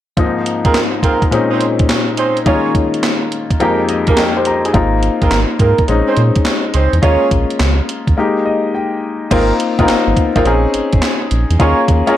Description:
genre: R&B, new jack swing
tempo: 105 BPM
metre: 4/4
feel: swing 67% on 16ths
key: unclear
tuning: A4 = 440 Hz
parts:
  - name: clear grand piano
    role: accompaniment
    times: 0.2-12.2 s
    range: F2 to Bb5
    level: -15 LUFS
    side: left 3 dB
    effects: none
  - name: gated 80s digital drum machine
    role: drums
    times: 0.2-12.2 s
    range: crash cymbal, handclaps, hi-hat, kick drum, snare drum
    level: -17 LUFS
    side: equal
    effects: gated reverb, gated reverb snare
  - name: mellow horn section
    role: stabs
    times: 0.6-12.2 s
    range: F3 to Db5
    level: -18 LUFS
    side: right 4 dB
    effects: none
  - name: round analog bass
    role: bass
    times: 4.7-12.0 s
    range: Ab1 to Bb2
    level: -15 LUFS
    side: right 1 dB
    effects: none
room: digital ambience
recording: none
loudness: -12 LUFS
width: side -12 dB against mid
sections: 0.2-9.3 A section; 9.3-12.2 B section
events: grand piano fill 3.6-4.7, 8.2-9.3; break 8.2-9.3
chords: 0.2 Ab69; 1.3 Bbm11; 2.5 Eb9sus4; 3.6 Fm11; 4.7 Ab69; 5.9 Bbm11; 7.0 Eb9sus4; 8.2 Ebadd11/Ab; 9.3 Ab69; 10.5 Bbm11; 11.6 Eb9sus4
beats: | 0.17 0.74 1.31 1.88 | 2.45 3.03 3.60 4.17 | 4.74 5.31 5.88 6.45 | 7.03 7.60 8.17 8.74 | 9.31 9.88 10.45 11.03 | 11.60 12.17

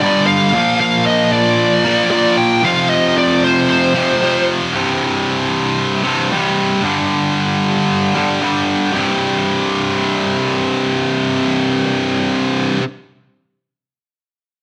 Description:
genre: metal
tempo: 114 BPM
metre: 4/4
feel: straight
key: unclear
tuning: A4 = 440 Hz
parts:
  - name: high-gain lead guitar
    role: melody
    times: 0.0-4.4 s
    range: C5 to G5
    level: -18 LUFS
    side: equal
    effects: distortion
  - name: heavy high-gain guitar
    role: riff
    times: 0.0-12.8 s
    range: C2 to Bb3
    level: -17 LUFS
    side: equal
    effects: distortion
room: moderate studio reverb, RT60 0.9 s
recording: none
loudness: -15 LUFS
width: mono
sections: 0.0-4.7 A section; 4.7-8.9 B section; 8.9-13.2 C section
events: half time 0.0-4.7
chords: 0.0 G5; 0.5 Bb; 2.6 F5; 4.7 C5; 6.8 G5; 8.9 C5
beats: 0.01 | 0.54 1.06 1.58 2.11 | 2.63 3.16 3.68 4.21 | 4.73 5.26 5.79 6.31 | 6.84 7.37 7.89 8.42 | 8.95 9.47 10.00 10.53 | 11.06 11.59 12.11 12.64

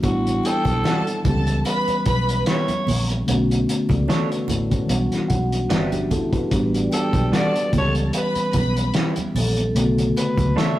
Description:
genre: lush 1970s-style soul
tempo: 74 BPM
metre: 4/4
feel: swing 54% on 16ths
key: unclear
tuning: A4 = 440 Hz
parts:
  - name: growling alto saxophone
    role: melody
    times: 0.0-10.8 s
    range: F#4 to E5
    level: -26 LUFS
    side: right 1 dB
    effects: none
  - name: mellow tine electric piano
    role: accompaniment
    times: 0.0-10.8 s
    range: C#3 to A5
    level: -23 LUFS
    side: left 1 dB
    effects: phaser
  - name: vintage muted fingered electric bass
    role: bass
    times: 0.0-10.5 s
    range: G1 to C#2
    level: -24 LUFS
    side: equal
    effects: none
  - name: cloth-damped thuddy drum kit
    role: drums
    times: 0.0-10.8 s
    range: hi-hat, kick drum, snare drum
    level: -24 LUFS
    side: equal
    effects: none
  - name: congas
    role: percussion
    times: 0.0-10.6 s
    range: none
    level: -31 LUFS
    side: right 3 dB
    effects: none
  - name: warm studio violin section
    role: second line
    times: 0.4-8.9 s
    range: G4 to B5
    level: -27 LUFS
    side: left 1 dB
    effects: none
  - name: electric guitar through a small old amp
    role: riff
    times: 0.8-10.8 s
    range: G3 to C#5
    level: -29 LUFS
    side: right 3 dB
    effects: none
  - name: vibraphone with hard mallets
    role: texture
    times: 6.5-10.1 s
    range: A4 to D5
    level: -31 LUFS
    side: right 1 dB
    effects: none
room: moderate stone room reverb, RT60 1.4 s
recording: rough rehearsal-room recording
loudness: -18 LUFS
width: side -14 dB against mid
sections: 0.0-10.8 A section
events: tine electric piano fill 4.9-6.5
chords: 0.0 A13sus4; 1.2 C#m7b5; 3.3 Bm9; 4.9 Em7/B; 6.5 A13sus4; 7.7 C#m7b5; 9.8 Bm9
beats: | 0.03 0.84 1.65 2.46 | 3.27 4.09 4.90 5.71 | 6.52 7.33 8.14 8.95 | 9.76 10.57

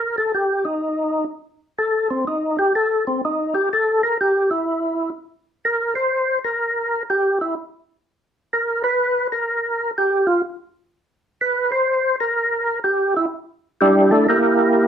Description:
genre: jazz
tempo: 125 BPM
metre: 4/4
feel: swing 67% on 8ths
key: unclear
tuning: A4 = 440 Hz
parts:
  - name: percussive tonewheel organ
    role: solo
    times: 0.0-14.9 s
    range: G3 to C5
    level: -17 LUFS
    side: equal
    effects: slow rotary speaker, overdrive, chorus vibrato
room: wet club reverb, RT60 0.6 s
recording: heard from further back in the room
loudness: -18 LUFS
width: side -8 dB against mid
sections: 0.0-14.9 A section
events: tonewheel organ solo 0.0-14.9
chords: 0.0 N.C.; 12.3 Gm69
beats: 0.31 | 0.79 1.28 1.76 2.24 | 2.72 3.20 3.69 4.17 | 4.65 5.13 5.61 6.09 | 6.57 7.05 7.53 8.01 | 8.49 8.98 9.46 9.94 | 10.42 10.90 11.38 11.86 | 12.34 12.82 13.31 13.79 | 14.27 14.75

